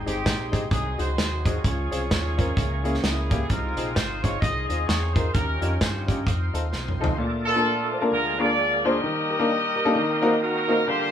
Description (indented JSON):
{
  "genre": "uptempo gospel",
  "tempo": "130 BPM",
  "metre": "4/4",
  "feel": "swing 59% on 8ths",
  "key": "Ab major, Bb major from 7.2 s",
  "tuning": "A4 = 439 Hz",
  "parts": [
    { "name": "clear grand piano", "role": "accompaniment", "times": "0.0-11.1 s", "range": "Ab2 to C5", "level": "-26 LUFS", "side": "left 2 dB", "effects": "none" },
    { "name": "bright tonewheel organ", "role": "sustained chords", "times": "0.0-11.1 s", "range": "D2 to C5", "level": "-32 LUFS", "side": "right 2 dB", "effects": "slow rotary speaker, overdrive, chorus vibrato" },
    { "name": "dark French horn section", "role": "sustained chords", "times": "0.0-7.2 s", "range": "F3 to Fb5", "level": "-39 LUFS", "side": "equal", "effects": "none" },
    { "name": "fingered electric bass", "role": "bass", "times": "0.0-7.1 s", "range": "G1 to G2", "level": "-28 LUFS", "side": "equal", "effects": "none" },
    { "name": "clear horn section", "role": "melody", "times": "0.1-11.1 s", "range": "C4 to Eb5", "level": "-27 LUFS", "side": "equal", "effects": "none" },
    { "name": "warm soul drum kit", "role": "drums", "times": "0.1-7.2 s", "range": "hi-hat, kick drum, snare drum, toms", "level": "-26 LUFS", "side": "equal", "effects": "none" }
  ],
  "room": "wet studio reverb, RT60 0.6 s",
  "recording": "band playing live in one room",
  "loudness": "-21 LUFS",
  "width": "side -9 dB against mid",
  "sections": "0.0-7.2 A section; 7.2-11.1 B section",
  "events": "drum fill 6.7-7.2",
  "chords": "0.0 Abmaj7; 0.7 Ab7/C; 1.6 Dbmaj7; 2.6 Dbm6; 3.5 Ab6; 5.3 Eb9; 6.3 F7; 7.2 Bbmaj7; 8.1 Bb7/D; 9.0 Ebmaj7; 9.9 Ebm6"
}